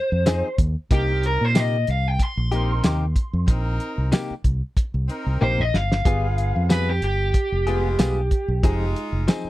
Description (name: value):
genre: straight-eighth soul blues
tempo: 93 BPM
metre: 4/4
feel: swing 54% on 16ths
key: C minor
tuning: A4 = 440 Hz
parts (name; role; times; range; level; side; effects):
- crunchy overdriven guitar; melody; 0.0-8.9 s; G4 to C6; -25 LUFS; equal; none
- fingered electric bass; bass; 0.1-9.5 s; F1 to Bb2; -22 LUFS; equal; none
- direct-recorded clean electric guitar; stabs; 0.3-9.5 s; C3 to Ab4; -26 LUFS; left 4 dB; wide subtle chorus
- cloth-damped thuddy drum kit; drums; 0.3-9.4 s; hi-hat, kick drum, snare drum, tambourine, toms; -20 LUFS; equal; none
- bright horn section; sustained chords; 0.9-9.3 s; Ab3 to Bb4; -32 LUFS; equal; none
room: little or no reverb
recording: dry, close 1970s-style studio recording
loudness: -19 LUFS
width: side -16 dB against mid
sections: 0.0-9.5 A section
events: drum fill 5.4-6.1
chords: 0.0 Fm7; 0.9 Cm7; 6.1 G7b9; 8.6 Fm7